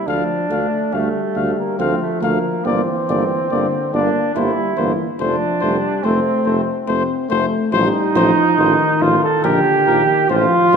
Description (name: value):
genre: classical, brass quintet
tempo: 70 BPM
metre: 3/4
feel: rubato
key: F major, Bb major from 7.7 s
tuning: A4 = 441 Hz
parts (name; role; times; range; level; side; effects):
- mellow flugelhorn; second line; 0.0-10.8 s; A3 to A4; -18 LUFS; right 3 dB; none
- dark French horn; accompaniment; 0.0-10.8 s; D3 to C4; -22 LUFS; left 5 dB; none
- mellow trumpet; melody; 0.1-10.8 s; Bb4 to F5; -24 LUFS; left 7 dB; none
- warm trombone; accompaniment; 0.1-10.8 s; F3 to Bb3; -25 LUFS; right 2 dB; none
- warm tuba; bass; 0.1-10.8 s; F1 to D2; -23 LUFS; right 2 dB; none
room: wet concert hall reverb, RT60 2.1 s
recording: minimal, uncompressed stereo recording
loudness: -15 LUFS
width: side -6 dB against mid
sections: 0.0-10.8 A section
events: none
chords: 0.1 Dm; 2.7 Gm; 4.4 C7/G; 5.2 F; 7.7 F7/A; 9.4 Bb